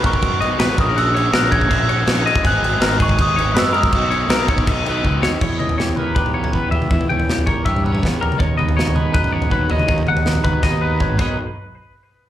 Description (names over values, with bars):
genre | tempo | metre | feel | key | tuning
math rock and midwest emo | 161 BPM | 4/4 | straight | B major | A4 = 441 Hz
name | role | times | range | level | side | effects
twangy electric guitar | arpeggios | 0.0-11.4 s | F#4 to G5 | -22 LUFS | left 5 dB | lush chorus, slapback echo, tape echo
raw garage guitar | riff | 0.0-5.4 s | G#2 to F#4 | -24 LUFS | right 1 dB | overdrive, slapback echo
fuzz fingered electric bass | bass | 0.0-11.4 s | G#1 to G2 | -21 LUFS | equal | overdrive
modern studio drum kit | drums | 0.0-11.3 s | crash cymbal, kick drum, snare drum, toms | -20 LUFS | equal | none
glockenspiel with rubber mallets | melody | 0.1-5.0 s | C#6 to A#6 | -21 LUFS | right 2 dB | slapback echo, tape echo
twelve-string electric guitar | accompaniment | 5.4-11.4 s | B2 to A#4 | -24 LUFS | right 6 dB | slapback echo
room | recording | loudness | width
little or no reverb | live gig heard through the venue's PA, club reverb, lossy compression artefacts | -15 LUFS | side -12 dB against mid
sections
0.0-5.4 A section; 5.4-11.4 B section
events
drum fill 5.0-5.4, 10.6-11.4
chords
0.0 Bmaj7; 0.8 F#7/A#; 2.4 G#m7; 3.9 Bmaj7; 5.4 Em6; 8.4 B/D#; 11.2 Bmaj7; 11.4 N.C.